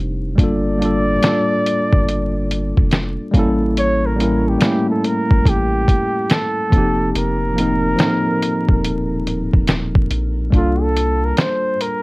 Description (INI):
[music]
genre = lo-fi hip hop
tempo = 71 BPM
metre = 4/4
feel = swing 66% on 16ths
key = unclear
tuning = A4 = 440 Hz
[part]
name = mellow tine electric piano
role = accompaniment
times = 0.0-12.0 s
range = F3 to Bb4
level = -19 LUFS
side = equal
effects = medium stereo tremolo
[part]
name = soft dub sub bass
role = bass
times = 0.0-11.3 s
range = D1 to C2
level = -21 LUFS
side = equal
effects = none
[part]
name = breathy flugelhorn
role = melody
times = 0.4-12.0 s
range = F4 to D5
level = -21 LUFS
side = equal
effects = plate reverb
[part]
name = lo-fi sampler-style drum kit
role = drums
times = 0.4-12.0 s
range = hi-hat, kick drum, snare drum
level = -16 LUFS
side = equal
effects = none
[sound]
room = light reverb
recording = worn, warbling old tape, cassette tape, vinyl crackle, warbly pitch drift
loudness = -15 LUFS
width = side -23 dB against mid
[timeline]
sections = 0.0-10.5 A section; 10.5-12.0 B section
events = break 0.0-0.4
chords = 0.4 Gm9; 3.3 A7b9; 6.7 F7sus4; 10.5 C13sus4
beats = | 0.38 1.23 2.07 2.92 | 3.76 4.61 5.45 6.30 | 7.14 7.99 8.83 9.68 | 10.52 11.37